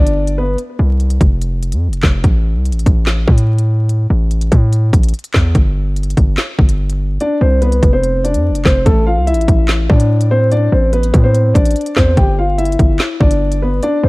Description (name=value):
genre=hip hop, drill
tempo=145 BPM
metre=4/4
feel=half-time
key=unclear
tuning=A4 = 440 Hz
part: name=dark concert grand piano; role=melody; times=0.0-0.6, 7.2-14.1 s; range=A3 to G5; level=-16 LUFS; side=left 1 dB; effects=ping-pong delay
part: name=hard-hitting 808-style bass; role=bass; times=0.0-14.1 s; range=F1 to A2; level=-14 LUFS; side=equal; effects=none
part: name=drill drum kit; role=drums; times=0.1-13.9 s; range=handclaps, hi-hat, kick drum, snare drum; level=-13 LUFS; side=equal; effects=none
room=little or no reverb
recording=dark, warm production, vinyl crackle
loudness=-11 LUFS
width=side -22 dB against mid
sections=0.0-14.1 A section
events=none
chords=0.0 G; 0.6 F5; 2.2 N.C.; 7.2 F5; 8.9 Am; 12.2 G